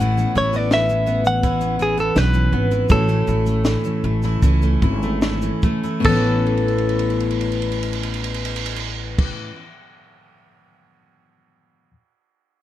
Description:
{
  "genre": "acoustic pop",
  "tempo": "72-85 BPM",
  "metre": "4/4",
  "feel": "straight",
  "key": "A major",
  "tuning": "A4 = 440 Hz",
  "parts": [
    { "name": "direct-recorded clean electric guitar", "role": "melody", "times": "0.0-9.3 s", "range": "G#4 to F#5", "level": "-22 LUFS", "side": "right 1 dB", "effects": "none" },
    { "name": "bright reed electric piano", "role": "accompaniment", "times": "0.0-11.9 s", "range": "A3 to C#5", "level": "-30 LUFS", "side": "left 1 dB", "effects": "none" },
    { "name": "fingerpicked steel-string acoustic guitar", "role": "accompaniment", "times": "0.0-9.7 s", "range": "A2 to E4", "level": "-23 LUFS", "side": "left 4 dB", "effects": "none" },
    { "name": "picked steel-string acoustic guitar", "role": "arpeggios", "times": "0.0-9.6 s", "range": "E3 to C#4", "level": "-27 LUFS", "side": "right 4 dB", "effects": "none" },
    { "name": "upright bass", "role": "bass", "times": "0.0-9.3 s", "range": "G#1 to C#2", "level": "-22 LUFS", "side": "equal", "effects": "none" },
    { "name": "compact cocktail drum kit", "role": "drums", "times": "0.0-10.9 s", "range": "crash cymbal, kick drum, ride cymbal, shaker, snare drum", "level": "-23 LUFS", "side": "right 1 dB", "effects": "none" }
  ],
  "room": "little or no reverb",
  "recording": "close, detailed microphones",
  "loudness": "-17 LUFS",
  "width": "side -13 dB against mid",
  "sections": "0.0-6.0 A section; 6.0-9.4 B section",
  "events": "slowing down 0.0-6.0; drum fill 6.5-9.2",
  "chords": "0.0 Aadd9; 2.9 F#m7/A; 6.0 Aadd9"
}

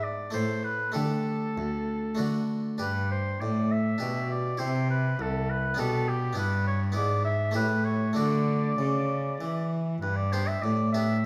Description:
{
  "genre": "classical, baroque-style sonata movement with continuo",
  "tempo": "100 BPM",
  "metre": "3/4",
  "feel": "rubato",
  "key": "G major, D major from 6.4 s",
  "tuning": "A4 = 440 Hz",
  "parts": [
    { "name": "warm oboe", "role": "melody", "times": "0.0-11.3 s", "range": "G4 to E5", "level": "-34 LUFS", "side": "equal", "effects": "none" },
    { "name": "harpsichord", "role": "accompaniment", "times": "0.0-11.2 s", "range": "C2 to A4", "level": "-34 LUFS", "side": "equal", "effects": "none" },
    { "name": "rich cello", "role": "bass", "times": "0.0-11.3 s", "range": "C2 to E3", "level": "-31 LUFS", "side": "equal", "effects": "none" }
  ],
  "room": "wet recital hall reverb, RT60 1.3 s",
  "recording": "none",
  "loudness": "-28 LUFS",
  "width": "mono",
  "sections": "0.0-10.0 A section; 10.0-11.3 A section",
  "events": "none",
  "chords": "0.3 Am; 1.0 Dsus4; 2.2 D; 2.8 G5; 4.0 G/B; 4.6 C; 5.8 G/B; 6.4 Em7/G; 7.0 E7/G#; 7.6 A7; 8.2 D; 10.0 G"
}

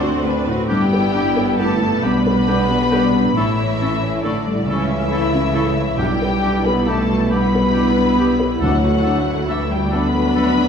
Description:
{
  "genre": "cinematic",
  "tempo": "45 BPM (dotted quarters)",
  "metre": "6/8",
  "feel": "rubato",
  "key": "G lydian",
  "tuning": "A4 = 440 Hz",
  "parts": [
    { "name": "muted studio violin section", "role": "melody", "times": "0.0-10.7 s", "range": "D5 to B5", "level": "-25 LUFS", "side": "left 5 dB", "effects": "none" },
    { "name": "clear oboe", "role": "second line", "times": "0.0-10.5 s", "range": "G4 to D5", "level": "-31 LUFS", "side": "right 1 dB", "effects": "none" },
    { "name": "mellow clarinet", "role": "second line", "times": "0.0-10.5 s", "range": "C4 to E4", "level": "-31 LUFS", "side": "left 2 dB", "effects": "none" },
    { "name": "mellow flute section", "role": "second line", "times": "0.0-10.5 s", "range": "F#5 to D6", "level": "-36 LUFS", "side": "left 3 dB", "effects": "none" },
    { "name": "muted studio violin section", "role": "second line", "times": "0.0-10.7 s", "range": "D4 to C5", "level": "-28 LUFS", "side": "left 2 dB", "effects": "none" },
    { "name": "felt-muted upright piano", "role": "accompaniment", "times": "0.0-10.7 s", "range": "B1 to C#5", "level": "-22 LUFS", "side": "left 1 dB", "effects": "none" },
    { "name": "muted studio viola section", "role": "accompaniment", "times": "0.0-10.7 s", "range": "F#3 to F#4", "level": "-23 LUFS", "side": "right 2 dB", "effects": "none" },
    { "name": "mellow French horn section", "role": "sustained chords", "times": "0.0-10.7 s", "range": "D3 to A4", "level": "-21 LUFS", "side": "left 2 dB", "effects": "none" },
    { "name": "muted studio cello section", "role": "bass", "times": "0.0-10.7 s", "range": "D2 to C#3", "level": "-26 LUFS", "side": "right 2 dB", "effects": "none" },
    { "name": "muted studio double bass section", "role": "bass", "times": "0.0-10.7 s", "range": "G1 to D2", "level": "-26 LUFS", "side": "right 3 dB", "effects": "none" },
    { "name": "timpani", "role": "percussion", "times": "8.6-9.9 s", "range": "D3", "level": "-26 LUFS", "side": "equal", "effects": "none" }
  ],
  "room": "wet scoring stage reverb, RT60 1.5 s",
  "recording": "minimal, uncompressed stereo recording",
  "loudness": "-15 LUFS",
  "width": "side -7 dB against mid",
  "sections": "0.7-10.7 A section",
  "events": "none",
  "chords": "0.0 D7; 0.7 G; 3.4 A; 6.0 G/B; 8.6 D"
}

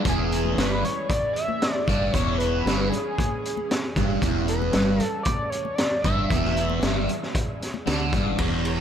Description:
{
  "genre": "psychedelic rock",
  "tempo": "115 BPM",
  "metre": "4/4",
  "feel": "straight",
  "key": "E mixolydian",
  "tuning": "A4 = 440 Hz",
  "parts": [
    { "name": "string machine, violins", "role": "sustained chords", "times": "0.0-8.8 s", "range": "E3 to C#5", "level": "-36 LUFS", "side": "right 3 dB", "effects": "ensemble chorus" },
    { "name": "fuzz guitar", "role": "riff", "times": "0.0-8.8 s", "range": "E2 to D3", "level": "-26 LUFS", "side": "right 1 dB", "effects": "distortion, phaser, dub echo" },
    { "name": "overdriven synth lead", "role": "melody", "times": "0.1-7.0 s", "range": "G#4 to E5", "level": "-28 LUFS", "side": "equal", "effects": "distortion, chorus, dub echo" },
    { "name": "fingered electric bass", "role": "bass", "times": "0.1-8.8 s", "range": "E1 to D2", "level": "-28 LUFS", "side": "equal", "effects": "none" },
    { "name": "raw garage drum kit", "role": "drums", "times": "0.1-8.8 s", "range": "hi-hat, kick drum, ride cymbal, snare drum", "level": "-26 LUFS", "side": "equal", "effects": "none" },
    { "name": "congas", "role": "percussion", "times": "0.5-8.4 s", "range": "none", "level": "-37 LUFS", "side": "left 10 dB", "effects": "dub echo" }
  ],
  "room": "little or no reverb",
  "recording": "echo-heavy mix",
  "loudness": "-22 LUFS",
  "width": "side -9 dB against mid",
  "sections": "0.0-8.4 A section",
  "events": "drum fill 8.0-8.4",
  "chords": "0.0 E"
}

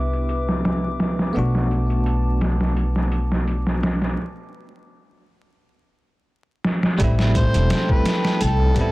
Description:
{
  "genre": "trip hop",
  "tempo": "85 BPM",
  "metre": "4/4",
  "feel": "swing 53% on 16ths",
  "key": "A dorian",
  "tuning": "A4 = 439 Hz",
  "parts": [
    { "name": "bell-like tine electric piano", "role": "accompaniment", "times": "0.0-8.9 s", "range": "G3 to G4", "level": "-27 LUFS", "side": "equal", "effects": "medium stereo tremolo, vintage 12-bit sampler grit, tape echo" },
    { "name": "dark analog pad", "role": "sustained chords", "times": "0.0-8.9 s", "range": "A4 to D6", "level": "-31 LUFS", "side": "left 1 dB", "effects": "chorus" },
    { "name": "upright bass", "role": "bass", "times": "0.0-8.9 s", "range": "E1 to C2", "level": "-21 LUFS", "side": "equal", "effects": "tube saturation" },
    { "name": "trip hop sampler-style drum kit", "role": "drums", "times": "0.1-8.9 s", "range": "hi-hat, kick drum, snare drum", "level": "-22 LUFS", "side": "equal", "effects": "overdrive, low-pass filter on hats, low-pass filter on snare, low-pass filter on kick, low-pass filter on room" },
    { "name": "overdriven harmonica", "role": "melody", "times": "7.4-8.9 s", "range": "A4 to C5", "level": "-25 LUFS", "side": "equal", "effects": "tape echo" }
  ],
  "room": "little or no reverb",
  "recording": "dense, heavily limited modern master, vinyl crackle",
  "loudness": "-18 LUFS",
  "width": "side -20 dB against mid",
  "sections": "0.0-7.0 A section; 7.0-8.9 B section",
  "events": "break 4.2-7.0; drum fill 6.6-7.0",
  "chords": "0.0 Cmaj9; 1.4 Bm7; 4.2 N.C.; 7.0 Am7"
}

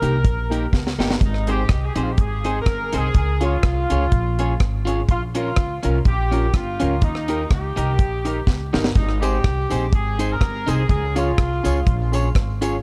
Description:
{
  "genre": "ska",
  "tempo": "124 BPM",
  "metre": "4/4",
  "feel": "swing 55% on 8ths",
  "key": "Ab major",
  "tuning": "A4 = 440 Hz",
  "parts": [
    { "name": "warm horn section", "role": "melody", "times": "0.0-12.6 s", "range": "Eb4 to Bb4", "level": "-29 LUFS", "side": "equal", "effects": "dub echo" },
    { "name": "electric guitar at the edge of break-up", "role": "accompaniment", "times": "0.0-12.8 s", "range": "Db4 to Db5", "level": "-31 LUFS", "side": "equal", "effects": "tube saturation" },
    { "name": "warm upright piano", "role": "stabs", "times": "0.0-12.7 s", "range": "Bb3 to Bb4", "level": "-31 LUFS", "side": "equal", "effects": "none" },
    { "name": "upright bass", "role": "bass", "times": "0.0-12.8 s", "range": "G1 to Eb2", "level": "-25 LUFS", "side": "equal", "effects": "none" },
    { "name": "deep reggae drum kit", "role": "drums", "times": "0.0-12.7 s", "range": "hi-hat, kick drum, rim click, snare drum", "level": "-22 LUFS", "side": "equal", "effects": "none" },
    { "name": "tambourine", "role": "percussion", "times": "9.2-12.7 s", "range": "none", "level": "-44 LUFS", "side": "equal", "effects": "dub echo" }
  ],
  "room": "small room ambience",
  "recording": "dark, warm production",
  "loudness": "-20 LUFS",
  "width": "mono",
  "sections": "0.0-9.0 A section; 9.0-12.8 A section",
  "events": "drum fill 0.7-1.2, 8.5-9.0",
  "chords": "0.0 Eb; 1.2 Ab; 3.1 Db; 5.1 Bbm; 7.0 Eb; 9.0 Ab; 10.9 Db"
}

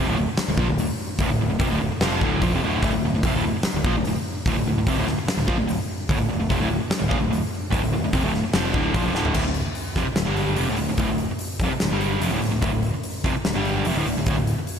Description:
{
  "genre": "hard rock",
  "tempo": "147 BPM",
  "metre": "4/4",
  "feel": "straight",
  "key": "D minor",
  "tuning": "A4 = 440 Hz",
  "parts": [
    { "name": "overdriven electric guitar", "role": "riff", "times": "0.0-14.6 s", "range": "D2 to G3", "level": "-23 LUFS", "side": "equal", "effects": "slapback echo" },
    { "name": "picked electric bass", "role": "bass", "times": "0.0-14.6 s", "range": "D1 to Bb1", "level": "-27 LUFS", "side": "equal", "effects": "none" },
    { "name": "huge arena drum kit", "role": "drums", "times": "0.4-14.8 s", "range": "crash cymbal, hi-hat, kick drum, snare drum, toms", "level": "-25 LUFS", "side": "equal", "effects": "none" }
  ],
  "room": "light reverb, small room ambience",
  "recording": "none",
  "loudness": "-20 LUFS",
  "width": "side -7 dB against mid",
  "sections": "0.0-9.4 A section; 9.4-14.8 B section",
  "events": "drum fill 9.2",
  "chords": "0.0 Dm"
}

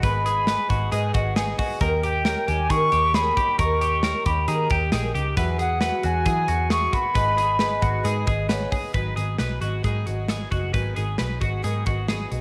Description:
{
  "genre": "jangly indie pop",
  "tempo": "135 BPM",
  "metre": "4/4",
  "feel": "straight",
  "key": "G# minor",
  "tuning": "A4 = 440 Hz",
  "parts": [
    { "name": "silver concert flute", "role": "melody", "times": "0.0-8.3 s", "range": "F#5 to C#6", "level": "-26 LUFS", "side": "equal", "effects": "slapback echo" },
    { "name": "vibraphone with hard mallets", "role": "second line", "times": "0.0-8.9 s", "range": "B4 to G#5", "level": "-38 LUFS", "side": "equal", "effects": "none" },
    { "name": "picked twelve-string acoustic guitar", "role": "accompaniment", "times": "0.0-12.4 s", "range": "G#2 to A#4", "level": "-34 LUFS", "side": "equal", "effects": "none" },
    { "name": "reed electric piano", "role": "accompaniment", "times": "0.0-9.0 s", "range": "A#3 to F#5", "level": "-37 LUFS", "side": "equal", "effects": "spring reverb" },
    { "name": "twelve-string electric guitar", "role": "arpeggios", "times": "0.0-12.4 s", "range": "F#4 to B4", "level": "-31 LUFS", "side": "equal", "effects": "slapback echo" },
    { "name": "vintage muted picked electric bass", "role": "bass", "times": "0.0-12.4 s", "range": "F#1 to E3", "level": "-28 LUFS", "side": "equal", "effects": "none" },
    { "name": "modern studio drum kit", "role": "drums", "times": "0.0-12.4 s", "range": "hi-hat, kick drum, snare drum", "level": "-30 LUFS", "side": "equal", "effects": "none" }
  ],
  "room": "moderate echo chamber reverb, RT60 1.5 s, small room ambience",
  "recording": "none",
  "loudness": "-23 LUFS",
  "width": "mono",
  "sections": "0.0-8.9 A section; 8.9-12.4 B section",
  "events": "none",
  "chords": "0.0 G#m; 1.8 D#; 5.4 Eadd9; 7.2 G#m; 8.9 G#m7"
}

